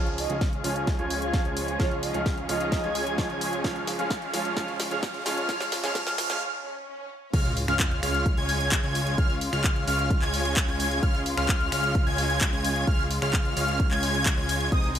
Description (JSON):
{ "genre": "EDM, festival progressive house", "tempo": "130 BPM", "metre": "4/4", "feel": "straight", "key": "Db major", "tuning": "A4 = 440 Hz", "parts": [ { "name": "bright baby grand piano", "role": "accompaniment", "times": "0.0-6.4 s", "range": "F3 to Ab4", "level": "-34 LUFS", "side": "right 3 dB", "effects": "sidechain pumping, digital delay" }, { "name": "rich studio string section", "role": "sustained chords", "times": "0.0-15.0 s", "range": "C3 to Ab4", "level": "-36 LUFS", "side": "left 3 dB", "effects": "sidechain pumping" }, { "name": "wide unison lead", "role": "arpeggios", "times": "0.0-14.9 s", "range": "Eb6 to Ab6", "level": "-30 LUFS", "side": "left 1 dB", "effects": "lush chorus, sidechain pumping, digital delay" }, { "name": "supersaw chords", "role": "riff", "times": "0.0-14.9 s", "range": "Ab3 to Ab5", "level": "-32 LUFS", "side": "right 2 dB", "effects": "sidechain pumping, low-pass filter, digital delay" }, { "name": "fat analog bass", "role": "bass", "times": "0.0-15.0 s", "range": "C2 to Db2", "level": "-32 LUFS", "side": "equal", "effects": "sidechain pumping" }, { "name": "riser, swell and sub drop", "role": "sound effects", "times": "0.0-9.2 s", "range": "none", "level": "-38 LUFS", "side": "right 1 dB", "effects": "none" }, { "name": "house drum kit", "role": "drums", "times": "0.1-15.0 s", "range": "crash cymbal, finger snaps, handclaps, hi-hat, snare drum", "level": "-31 LUFS", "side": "left 1 dB", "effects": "high-pass filter on hats, high-pass filter on snare, high-pass filter on cymbals" }, { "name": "breathy flute-like synth lead", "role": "melody", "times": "0.2-3.0 s", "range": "Db5 to Ab5", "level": "-34 LUFS", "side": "right 1 dB", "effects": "analog chorus, digital delay" }, { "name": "electronic kick drum", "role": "drums", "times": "0.4-14.8 s", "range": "none", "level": "-26 LUFS", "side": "equal", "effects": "none" } ], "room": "light reverb", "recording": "high-pass filter", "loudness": "-23 LUFS", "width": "side -10 dB against mid", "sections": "0.0-7.3 A section; 7.3-15.0 B section", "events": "build-up 0.0-7.3; drum fill 0.0-6.4; riser 0.0-6.4; filter sweep on supersaw synth 0.0-7.3; filter sweep on analog synth lead 0.0-7.3; filter sweep 0.0-7.3; break 6.4-7.3; swell 6.4-7.3; drop 7.3-15.0; impact 7.3-9.2", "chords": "0.0 Db" }